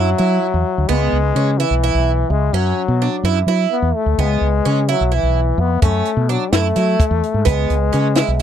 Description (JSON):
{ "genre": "progressive instrumental, band music in an uneven meter", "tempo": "255 BPM (eighths)", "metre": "7/8", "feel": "straight", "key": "F# minor", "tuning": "A4 = 439 Hz", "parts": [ { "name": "clear trombone", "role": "second line", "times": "0.0-8.4 s", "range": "E3 to B3", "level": "-20 LUFS", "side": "left 10 dB", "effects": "none" }, { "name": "picked twelve-string acoustic guitar", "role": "arpeggios", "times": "0.0-8.4 s", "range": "B3 to E4", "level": "-21 LUFS", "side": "right 16 dB", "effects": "none" }, { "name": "mellow fretless electric bass", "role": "bass", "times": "0.0-8.4 s", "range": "B1 to F#3", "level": "-17 LUFS", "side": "equal", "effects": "none" }, { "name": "compact cocktail drum kit", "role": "drums", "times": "5.8-8.4 s", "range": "hi-hat, kick drum, snare drum", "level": "-17 LUFS", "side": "equal", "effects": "none" } ], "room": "little or no reverb", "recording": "dry, close 1970s-style studio recording", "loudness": "-14 LUFS", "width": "side -9 dB against mid", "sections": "0.0-8.4 A section", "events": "none", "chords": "0.0 F#5; 0.9 C#m7; 2.5 F#5; 4.2 C#m7; 5.8 F#m7; 7.5 C#m7" }